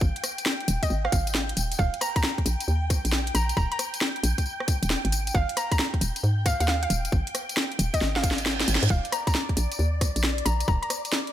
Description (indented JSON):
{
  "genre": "UK garage, two-step garage",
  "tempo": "135 BPM",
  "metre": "4/4",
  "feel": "swing 66% on 16ths",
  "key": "Eb major",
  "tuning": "A4 = 440 Hz",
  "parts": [
    { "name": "soft string machine", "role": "sustained chords", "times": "0.0-11.3 s", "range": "D5 to G5", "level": "-36 LUFS", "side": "equal", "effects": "phaser, ensemble chorus, sidechain pumping" },
    { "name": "hollow knocking FM bass", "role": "bass", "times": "0.0-10.8 s", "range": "Eb1 to Ab2", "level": "-26 LUFS", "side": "equal", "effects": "none" },
    { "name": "electronic kick drum", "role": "drums", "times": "0.0-10.8 s", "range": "none", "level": "-25 LUFS", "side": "equal", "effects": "overdrive, small room ambience" },
    { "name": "garage drum kit", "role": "drums", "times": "0.0-11.3 s", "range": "hi-hat, rim click, snare drum, tambourine", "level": "-28 LUFS", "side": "left 1 dB", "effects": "overdrive, small room ambience" },
    { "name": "hollow square pluck", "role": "melody", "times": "0.8-10.9 s", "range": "Eb5 to Bb5", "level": "-31 LUFS", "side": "equal", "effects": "chorus, dub echo" },
    { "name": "reverse cymbal", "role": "sound effects", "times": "8.3-8.9 s", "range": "none", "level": "-32 LUFS", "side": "right 5 dB", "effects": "none" }
  ],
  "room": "little or no reverb",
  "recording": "none",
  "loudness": "-23 LUFS",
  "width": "side -12 dB against mid",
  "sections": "0.0-11.3 A section",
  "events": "drum fill 8.0-8.9; reverse cymbal 8.3-8.9",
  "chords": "0.0 Ab5; 1.8 Eb; 5.1 Ab5; 8.9 Eb5"
}